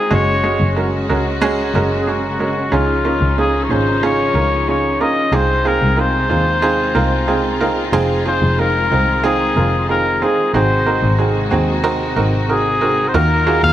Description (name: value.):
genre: piano-driven pop.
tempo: 92 BPM.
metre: 4/4.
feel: straight.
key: unclear.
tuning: A4 = 440 Hz.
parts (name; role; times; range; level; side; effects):
clear trumpet; melody; 0.0-13.7 s; F4 to F5; -18 LUFS; left 2 dB; plate reverb.
bright upright piano; accompaniment; 0.0-13.7 s; Ab2 to Bb4; -18 LUFS; right 3 dB; plate reverb.
warm studio string section; sustained chords; 0.0-13.7 s; C3 to Gb4; -25 LUFS; left 4 dB; plate reverb.
dark double bass; bass; 0.1-13.7 s; F1 to Eb2; -19 LUFS; left 1 dB; none.
room: moderate studio reverb, RT60 0.7 s.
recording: none.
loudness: -14 LUFS.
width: side -12 dB against mid.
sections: 0.0-13.1 A section.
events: none.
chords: 0.1 Gbsus2; 2.7 Dbadd9; 5.3 Ab6/C; 7.9 Fm7; 10.5 Ab7; 13.1 Ebmadd9.